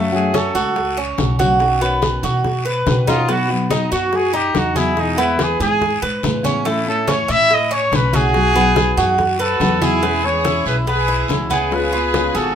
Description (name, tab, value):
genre	latin, Cuban son and guajira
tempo	142 BPM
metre	4/4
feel	straight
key	E major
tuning	A4 = 444 Hz
part	nylon-string guitar	accompaniment	0.0-12.6 s	B2 to G#4	-23 LUFS	left 3 dB	none
part	Cuban tres	arpeggios	0.0-12.6 s	A3 to B4	-20 LUFS	right 2 dB	none
part	upright bass	bass	0.0-12.6 s	G#1 to B2	-23 LUFS	equal	none
part	warm trumpet	melody	0.1-12.6 s	B3 to E5	-19 LUFS	equal	none
part	congas	percussion	0.1-12.6 s	none	-25 LUFS	left 1 dB	none
part	bongos	percussion	0.3-12.6 s	none	-25 LUFS	left 2 dB	none
part	guiro	percussion	0.3-12.6 s	none	-30 LUFS	left 4 dB	none
part	warm studio violin section	second line	9.4-12.6 s	E4 to G#4	-24 LUFS	right 3 dB	none
room	moderate studio reverb, RT60 0.6 s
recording	minimal, uncompressed stereo recording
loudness	-15 LUFS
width	side -8 dB against mid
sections	0.0-10.0 A section; 10.0-12.6 B section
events	trumpet solo 0.0-10.0; drum fill 2.9-3.3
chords	0.0 F#m; 1.6 Badd9; 3.3 B; 5.0 E; 6.7 A; 8.3 B; 10.0 E6; 11.7 C#7